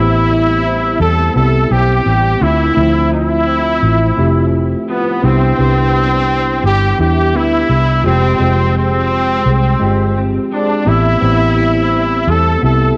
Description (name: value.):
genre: indie pop, bedroom pop.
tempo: 85 BPM.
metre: 4/4.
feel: swing 60% on 16ths.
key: unclear.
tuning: A4 = 440 Hz.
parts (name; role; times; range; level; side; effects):
clear trumpet; melody; 0.0-13.0 s; B3 to A4; -17 LUFS; equal; ensemble chorus, cassette tape, tape echo.
electric guitar through a small old amp; accompaniment; 0.0-13.0 s; A2 to G4; -26 LUFS; equal; ensemble chorus, warbly pitch drift.
tine electric piano; accompaniment; 0.0-13.0 s; F3 to B4; -21 LUFS; equal; none.
vintage muted fingered electric bass; bass; 0.0-12.9 s; F1 to E2; -17 LUFS; equal; tube saturation.
room: light reverb.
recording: home recording on cassette.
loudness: -13 LUFS.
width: mono.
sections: 0.0-13.0 A section.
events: none.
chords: 0.0 Am7; 2.4 Dm9; 5.2 Cmaj7; 8.0 Fmadd9; 10.9 Am7.